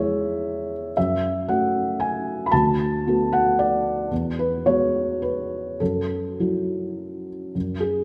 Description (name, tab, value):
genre	neoclassical minimalist piano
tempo	100-117 BPM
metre	3/4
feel	rubato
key	F# minor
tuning	A4 = 440 Hz
part	felt-muted upright piano	solo	0.0-8.0 s	D2 to B5	-23 LUFS	equal	none
room	moderate concert hall reverb, RT60 2.1 s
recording	none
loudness	-23 LUFS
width	mono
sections	0.0-7.5 A section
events	none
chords	0.0 C#m/E; 1.0 F#m; 2.5 D6; 4.1 Eadd9; 5.8 F#m7